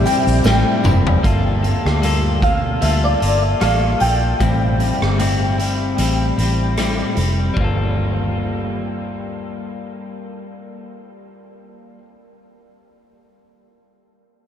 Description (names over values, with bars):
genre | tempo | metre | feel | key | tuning
indie pop, bedroom pop | 76 BPM | 4/4 | swing 55% on 16ths | G dorian | A4 = 442 Hz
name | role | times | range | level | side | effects
clean electric guitar | accompaniment | 0.0-12.1 s | A2 to A4 | -22 LUFS | left 3 dB | lush chorus, warbly pitch drift
phased analog pad | sustained chords | 0.0-1.2 s | C3 to A4 | -31 LUFS | left 2 dB | none
soft electric-piano-like synth keys | melody | 0.1-6.7 s | D5 to G5 | -22 LUFS | equal | ensemble chorus, analog delay
raw garage drum kit | drums | 0.1-7.8 s | hi-hat, kick drum, rim click, shaker, snare drum, toms | -22 LUFS | equal | none
tambourine | percussion | 0.1-1.0 s | none | -41 LUFS | right 5 dB | none
vintage muted fingered electric bass | bass | 0.3-12.0 s | F1 to D2 | -19 LUFS | equal | none
room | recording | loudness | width
moderate huge ambient reverb, RT60 9.6 s | dreamy mix soaked in reverb | -15 LUFS | side -9 dB against mid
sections
0.0-1.2 A section; 1.2-7.6 B section; 7.6-10.7 C section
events
drum fill 0.4-1.2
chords
0.0 Am7; 1.2 Gm9; 4.4 Am7; 7.6 Gm9